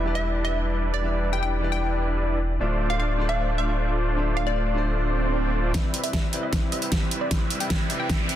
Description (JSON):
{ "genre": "future bass", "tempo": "153 BPM", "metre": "4/4", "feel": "half-time", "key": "unclear", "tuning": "A4 = 440 Hz", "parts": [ { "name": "warm concert grand piano", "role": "accompaniment", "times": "0.0-8.4 s", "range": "C3 to E5", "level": "-32 LUFS", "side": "left 2 dB", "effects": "sidechain pumping, dub echo" }, { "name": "supersaw chords", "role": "riff", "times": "0.0-8.4 s", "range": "G3 to E5", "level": "-29 LUFS", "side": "equal", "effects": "sidechain pumping, low-pass filter, dub echo" }, { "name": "saturated sub bass", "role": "bass", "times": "0.0-5.7 s", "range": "D1 to E1", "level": "-26 LUFS", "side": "equal", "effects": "sidechain pumping" }, { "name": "glassy wavetable pluck", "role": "melody", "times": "0.2-8.4 s", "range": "D5 to G5", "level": "-31 LUFS", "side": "equal", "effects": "chorus, sidechain pumping, dub echo" }, { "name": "swell and riser", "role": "sound effects", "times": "5.1-8.4 s", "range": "none", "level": "-34 LUFS", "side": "right 5 dB", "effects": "none" }, { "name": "dubstep drum kit", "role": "drums", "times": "5.7-8.4 s", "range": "hi-hat, snare drum", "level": "-27 LUFS", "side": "right 1 dB", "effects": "overdrive, low-pass filter on snare, low-pass filter on hats, low-pass filter on room" }, { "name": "electronic kick drum", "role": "drums", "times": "5.7-8.2 s", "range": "none", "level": "-26 LUFS", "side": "equal", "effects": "overdrive" } ], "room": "light reverb, digital ambience", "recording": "dense, heavily limited modern master", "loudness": "-22 LUFS", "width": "side -11 dB against mid", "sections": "0.0-5.7 A section; 5.7-8.4 B section", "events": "swell 5.1-5.7; build-up 5.7-8.4; drum fill 5.7-8.4; riser 5.7-8.4; filter sweep on supersaw synth 5.7-8.4; filter sweep on synth pluck 5.7-8.4", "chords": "0.0 Em7; 2.6 Dm7; 5.7 Cmaj7" }